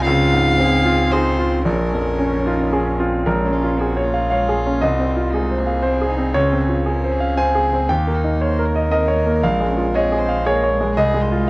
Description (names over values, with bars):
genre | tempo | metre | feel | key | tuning
neoclassical piano and strings | 116 BPM | 3/4 | rubato | Bb minor | A4 = 440 Hz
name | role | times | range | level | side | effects
warm violin | melody | 0.0-11.5 s | Db4 to F5 | -25 LUFS | left 2 dB | cassette tape
warm cello | second line | 0.0-11.5 s | Ab3 to Ab4 | -27 LUFS | right 1 dB | cassette tape
bright concert grand piano | accompaniment | 0.0-11.5 s | Bb1 to Ab5 | -18 LUFS | equal | cassette tape
dark viola | accompaniment | 0.0-3.3 s | C4 to Eb4 | -26 LUFS | equal | cassette tape
sub bass with octave | bass | 0.0-11.5 s | Bb1 to Eb2 | -23 LUFS | equal | none
room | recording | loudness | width
little or no reverb | home recording on cassette | -15 LUFS | side -24 dB against mid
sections
0.0-3.3 A section; 3.3-11.5 B section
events
none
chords
0.1 Dbmaj7; 1.6 Bbm7; 4.8 Fm7/C; 6.3 Dbmaj7; 7.9 Eb7; 9.4 Bbm7; 11.0 Fm7/C